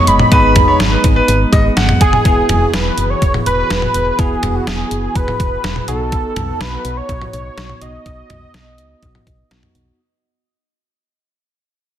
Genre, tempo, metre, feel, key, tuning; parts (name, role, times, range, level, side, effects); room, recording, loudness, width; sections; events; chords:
synth-pop; 124 BPM; 4/4; straight; E major; A4 = 441 Hz
wide unison lead; melody; 0.0-9.5 s; F#4 to B5; -18 LUFS; right 1 dB; tape echo
clear grand piano; second line; 0.0-2.1 s; B4 to F#5; -18 LUFS; left 1 dB; tape echo
bell-like tine electric piano; accompaniment; 0.0-10.0 s; B3 to G#4; -24 LUFS; left 3 dB
warm analog pad; sustained chords; 0.0-10.0 s; E3 to G#4; -24 LUFS; right 3 dB; chorus
solid FM bass; bass; 0.1-9.9 s; E1 to C#2; -19 LUFS; equal
detuned 8-bit digital drum machine; drums; 0.1-9.9 s; cowbell, hi-hat, kick drum, snare drum, toms; -16 LUFS; equal
light reverb; dense, heavily limited modern master; -12 LUFS; side -11 dB against mid
0.0-2.3 A section; 2.3-10.0 B section
fade-out 2.3-10.0
0.0 G#m; 2.3 Eadd9; 5.9 B